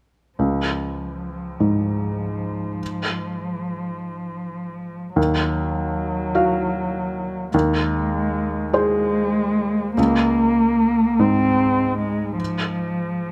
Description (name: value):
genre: neoclassical piano and strings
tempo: 50 BPM (dotted quarters)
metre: 6/8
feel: rubato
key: unclear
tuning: A4 = 438 Hz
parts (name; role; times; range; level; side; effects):
- muted cello; second line; 0.4-13.3 s; F3 to C4; -25 LUFS; equal; none
- felt-muted upright piano; accompaniment; 0.4-13.3 s; Db2 to F5; -24 LUFS; equal; none
room: moderate large studio reverb, RT60 1.1 s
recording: none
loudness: -21 LUFS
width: mono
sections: 0.4-10.0 A section; 10.0-13.3 B section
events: none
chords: 0.4 Db; 5.2 Ebmadd9; 7.5 Ab/Eb; 10.0 Dbmaj7